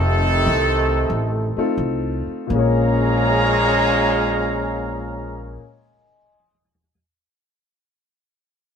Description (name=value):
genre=jazz, big band swing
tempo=79-101 BPM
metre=4/4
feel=swing 69% on 8ths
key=Bb minor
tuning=A4 = 440 Hz
part: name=warm trumpet section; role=melody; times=0.0-5.6 s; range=C4 to Bb5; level=-22 LUFS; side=right 1 dB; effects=none
part: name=bright trombone section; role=second line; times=0.0-5.6 s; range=Bb2 to Db4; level=-22 LUFS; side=equal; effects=none
part: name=upright bass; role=bass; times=0.0-5.6 s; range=F1 to C2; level=-22 LUFS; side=right 1 dB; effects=none
part: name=warm upright piano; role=accompaniment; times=1.6-6.9 s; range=Bb2 to Eb7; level=-23 LUFS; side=left 5 dB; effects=none
room=light reverb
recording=minimal, uncompressed stereo recording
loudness=-17 LUFS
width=side -7 dB against mid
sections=0.0-2.5 A section; 2.5-8.6 B section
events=slowing down 0.0-2.5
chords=0.0 F7; 2.5 Bbm7